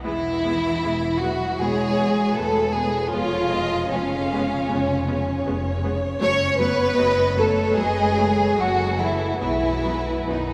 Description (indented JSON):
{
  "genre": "classical, slow romantic movement for string orchestra",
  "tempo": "77 BPM",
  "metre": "4/4",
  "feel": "uneven beats, rubato",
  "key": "E major",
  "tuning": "A4 = 440 Hz",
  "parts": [
    { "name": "rich chamber violin section", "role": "second line", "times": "0.0-10.5 s", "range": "C#4 to C#5", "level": "-24 LUFS", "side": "equal", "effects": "none" },
    { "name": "clear studio viola section", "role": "accompaniment", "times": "0.0-10.4 s", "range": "F#3 to B3", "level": "-34 LUFS", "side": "equal", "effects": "none" },
    { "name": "rich chamber double bass section", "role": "bass", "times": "0.0-10.5 s", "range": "E1 to B1", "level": "-31 LUFS", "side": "equal", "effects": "none" },
    { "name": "warm studio cello section", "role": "bass", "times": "0.0-10.5 s", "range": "C#3 to C#4", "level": "-31 LUFS", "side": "equal", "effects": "none" },
    { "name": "rich chamber violin section", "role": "melody", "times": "1.6-10.5 s", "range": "A4 to E#5", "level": "-33 LUFS", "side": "equal", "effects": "none" }
  ],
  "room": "wet cathedral reverb, RT60 7.2 s",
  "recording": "recorded in a church or concert hall",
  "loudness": "-22 LUFS",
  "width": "mono",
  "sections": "0.0-10.5 A section",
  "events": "none",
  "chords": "0.0 E; 3.1 C#7/E#; 6.2 F#m7; 9.4 B"
}